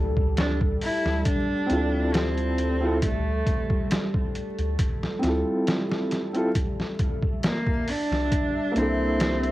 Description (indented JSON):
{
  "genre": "trip hop",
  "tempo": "68 BPM",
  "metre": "4/4",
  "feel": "straight",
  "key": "D minor",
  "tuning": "A4 = 439 Hz",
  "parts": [
    { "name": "deep dark ambient pad", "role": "sustained chords", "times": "0.0-9.5 s", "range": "G3 to E5", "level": "-31 LUFS", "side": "equal", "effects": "chorus, built-in reverb, vintage 12-bit sampler grit, cassette tape" },
    { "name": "soft dub sub bass", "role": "bass", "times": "0.0-9.5 s", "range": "C2 to D2", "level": "-28 LUFS", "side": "equal", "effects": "none" },
    { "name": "trip hop sampler-style drum kit", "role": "drums", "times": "0.2-9.5 s", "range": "hi-hat, kick drum, snare drum", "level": "-26 LUFS", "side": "equal", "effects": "overdrive, cassette tape" },
    { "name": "rich cello", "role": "melody", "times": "0.4-9.5 s", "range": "A3 to E4", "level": "-28 LUFS", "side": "right 1 dB", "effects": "cassette tape" },
    { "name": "felt-muted upright piano", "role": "accompaniment", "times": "1.7-9.5 s", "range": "Bb3 to A4", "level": "-27 LUFS", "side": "equal", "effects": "tremolo, vintage 12-bit sampler grit, cassette tape, tape echo" }
  ],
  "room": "light reverb",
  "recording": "home recording on cassette, vinyl crackle",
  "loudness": "-22 LUFS",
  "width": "side -16 dB against mid",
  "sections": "0.0-9.5 A section",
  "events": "none",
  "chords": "0.0 Dm9; 6.6 C13",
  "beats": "0.37 1.26 2.14 | 3.02 3.90 4.79 5.67 | 6.55 7.43 8.31 9.20"
}